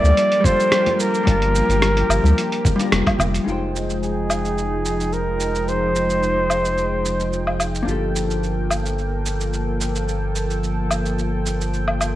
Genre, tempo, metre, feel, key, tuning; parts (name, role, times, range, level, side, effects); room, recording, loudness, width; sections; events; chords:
sunset chillout; 109 BPM; 4/4; straight; A4 = 440 Hz
warm flugelhorn; melody; 0.0-7.6 s; Ab4 to D5; -20 LUFS; equal; vintage 12-bit sampler grit, digital delay
vintage hollow-body jazz guitar; accompaniment; 0.0-12.2 s; G3 to A5; -25 LUFS; left 2 dB; auto-pan, digital delay
lush unison pad; sustained chords; 0.0-12.2 s; F3 to G5; -26 LUFS; equal; chorus
round analog bass; bass; 0.0-12.2 s; F1 to D2; -23 LUFS; equal; tube saturation
dusty soul sampler-style drum kit; drums; 0.0-12.1 s; hi-hat, rim click, shaker, woodblock; -24 LUFS; equal; overdrive
congas; percussion; 0.1-3.3 s; -27 LUFS; left 2 dB
electronic kick drum; drums; 0.4-3.2 s; -19 LUFS; equal; overdrive
moderate plate reverb, RT60 1.3 s, digital ambience; worn, warbling old tape, cassette tape, warbly pitch drift; -18 LUFS; side -14 dB against mid
0.0-3.5 A section; 3.5-12.2 B section
0.0 Gm9; 3.5 Fm9; 7.9 Gm9